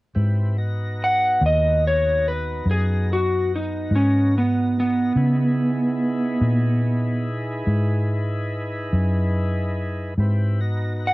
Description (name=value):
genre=slow blues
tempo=48 BPM (dotted quarters)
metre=12/8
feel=straight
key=G# minor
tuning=A4 = 440 Hz
part: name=tonewheel organ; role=sustained chords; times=0.1-11.1 s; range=B3 to A#5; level=-31 LUFS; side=equal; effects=slow rotary speaker, cassette tape
part: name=vintage muted fingered electric bass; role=bass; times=0.2-11.1 s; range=D#2 to C#3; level=-22 LUFS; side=equal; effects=none
part: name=electric slide guitar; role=melody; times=1.0-11.1 s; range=B3 to F#5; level=-20 LUFS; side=right 1 dB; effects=none
room=light reverb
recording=home recording on cassette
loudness=-19 LUFS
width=side -20 dB against mid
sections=0.2-11.1 A section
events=electric slide guitar solo 0.2-11.1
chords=0.2 G#m7; 5.2 C#m7; 10.2 G#m7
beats=| 0.16 1.41 2.66 3.91 | 5.17 6.42 7.67 8.93 | 10.18